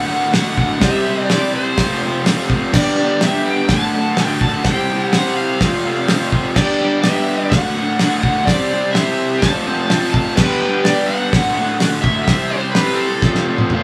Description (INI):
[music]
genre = garage rock duo or trio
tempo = 126 BPM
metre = 4/4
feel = straight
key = unclear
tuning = A4 = 440 Hz
[part]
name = overdriven slide guitar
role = melody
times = 0.0-13.6 s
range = A4 to A5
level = -24 LUFS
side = equal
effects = none
[part]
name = raw garage guitar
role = riff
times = 0.0-13.8 s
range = D2 to C5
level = -20 LUFS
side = equal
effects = overdrive
[part]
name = cloth-damped thuddy drum kit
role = drums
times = 0.3-13.8 s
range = crash cymbal, hi-hat, kick drum, snare drum, toms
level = -21 LUFS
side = equal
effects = none
[sound]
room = moderate studio reverb, RT60 0.7 s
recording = band playing live in one room, small room ambience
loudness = -16 LUFS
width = mono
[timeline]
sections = 0.0-13.8 A section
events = drum fill 13.2-13.8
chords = 0.0 D; 0.8 C; 1.8 F; 2.7 G; 3.7 D; 4.7 C; 5.6 F; 6.6 G; 7.5 D; 8.5 C; 9.4 F; 10.4 G; 11.3 D; 12.3 C; 13.2 F